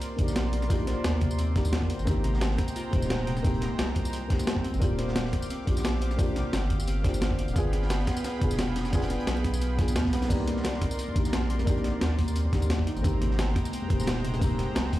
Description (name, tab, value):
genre	liquid drum and bass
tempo	175 BPM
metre	4/4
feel	swing 54% on 16ths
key	C minor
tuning	A4 = 440 Hz
part	felt-muted upright piano	accompaniment	0.0-15.0 s	Bb3 to Ab4	-34 LUFS	left 1 dB	dub echo
part	warm analog pad	sustained chords	0.0-15.0 s	Ab3 to D6	-38 LUFS	equal	chorus, tremolo
part	breakbeat sampler-style drum kit	drums	0.0-15.0 s	crash cymbal, hi-hat, snare drum, tambourine	-34 LUFS	equal	none
part	crunchy breakbeat drum kit	drums	0.0-15.0 s	hi-hat, snare drum	-39 LUFS	equal	high-pass filter on hats, high-pass filter on snare, high-pass filter on room
part	harp-like synth pluck	arpeggios	0.2-15.0 s	B2 to C5	-35 LUFS	equal	chorus, dub echo
part	saturated sub bass	bass	0.2-15.0 s	Eb1 to Eb2	-29 LUFS	equal	none
part	electronic kick drum	drums	0.2-15.0 s	none	-28 LUFS	equal	none
part	congas	percussion	10.5-15.0 s	none	-38 LUFS	left 4 dB	none
room	small room ambience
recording	played on a big sound system in a bare room, large studio reverb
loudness	-25 LUFS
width	side -15 dB against mid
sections	0.0-15.0 A section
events	none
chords	0.0 Cm9; 1.9 Abmaj9; 4.8 Ebmaj9; 7.6 G7b9; 10.3 Cm9; 12.9 Abmaj9